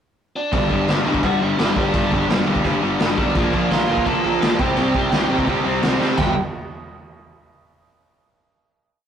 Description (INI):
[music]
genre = punk rock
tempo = 170 BPM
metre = 4/4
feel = straight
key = unclear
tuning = A4 = 440 Hz
[part]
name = biting lead guitar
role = melody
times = 0.4-6.3 s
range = D4 to A5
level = -25 LUFS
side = right 1 dB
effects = overdrive
[part]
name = distorted electric guitar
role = riff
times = 0.5-6.3 s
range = G2 to C4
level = -27 LUFS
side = right 7 dB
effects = overdrive
[part]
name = overdriven electric guitar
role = riff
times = 0.5-6.3 s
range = G2 to C4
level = -23 LUFS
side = right 1 dB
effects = none
[part]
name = sludgy distorted guitar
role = riff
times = 0.5-6.3 s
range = G2 to C4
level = -24 LUFS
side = left 4 dB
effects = overdrive
[part]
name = fuzz picked electric bass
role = bass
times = 0.5-6.3 s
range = E1 to C3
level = -26 LUFS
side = equal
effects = overdrive
[part]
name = raw garage drum kit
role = drums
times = 0.5-6.3 s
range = crash cymbal, kick drum, snare drum, splash cymbal, toms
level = -22 LUFS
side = equal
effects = none
[sound]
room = light reverb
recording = rough rehearsal-room recording, warm saturation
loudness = -16 LUFS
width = side -8 dB against mid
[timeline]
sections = 0.0-0.5 pickup bar; 0.5-6.2 riff; 6.2-7.6 final chord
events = drum fill 6.0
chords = 0.0 N.C.; 0.5 G5; 3.4 Bb; 4.6 C5; 6.2 G5